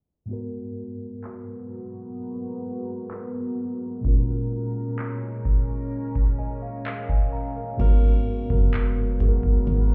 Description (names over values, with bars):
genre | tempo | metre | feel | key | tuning
contemporary R&B | 64 BPM | 4/4 | straight | G# minor | A4 = 440 Hz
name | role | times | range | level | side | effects
mellow tine electric piano | accompaniment | 0.3-9.9 s | G#2 to A#5 | -32 LUFS | equal | none
deep dark ambient pad | sustained chords | 1.3-9.9 s | F#3 to A#4 | -36 LUFS | equal | chorus, built-in reverb
booming analog drum machine | drums | 1.2-9.9 s | crash cymbal, handclaps, hi-hat, kick drum | -24 LUFS | equal | none
solid FM bass | bass | 7.8-9.9 s | F#1 to B1 | -24 LUFS | equal | none
room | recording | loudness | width
little or no reverb | heard muffled through a wall, club reverb, EQ, low-pass filter | -25 LUFS | mono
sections
0.3-7.8 A section; 7.8-9.9 B section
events
filter sweep 0.3-7.8; tine electric piano fill 5.9-7.8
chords
0.3 G#m9; 4.0 A#m7; 7.8 G#m9